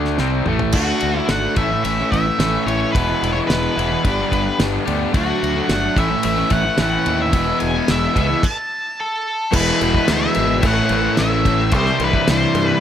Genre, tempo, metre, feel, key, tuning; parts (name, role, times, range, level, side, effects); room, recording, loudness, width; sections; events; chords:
classic rock; 109 BPM; 4/4; straight; A mixolydian; A4 = 440 Hz
crunchy overdriven guitar; riff; 0.0-12.8 s; E2 to G4; -22 LUFS; left 8 dB
crunchy overdriven guitar; riff; 0.0-12.8 s; G2 to F#4; -23 LUFS; right 8 dB
growling fingered electric bass; bass; 0.0-12.7 s; E1 to G2; -23 LUFS; equal; overdrive
damped 70s drum kit; drums; 0.0-12.7 s; crash cymbal, kick drum, ride cymbal, snare drum, toms; -22 LUFS; equal
octave-fuzz lead guitar; melody; 0.7-12.8 s; F#4 to A5; -21 LUFS; equal; distortion
overdriven electric guitar; riff; 9.5-12.8 s; A2 to E4; -24 LUFS; equal
cowbell; percussion; 9.5-12.7 s; -31 LUFS; right 3 dB
little or no reverb; -16 LUFS; side -9 dB against mid
0.7-9.5 A section; 9.5-12.8 B section
drum fill 0.2-0.7; stop 8.4-9.5
0.0 A5; 0.7 D; 1.6 A; 2.9 E; 4.0 G; 5.1 D; 6.0 A; 7.3 E; 8.4 N.C.; 9.5 E; 10.6 A; 11.7 C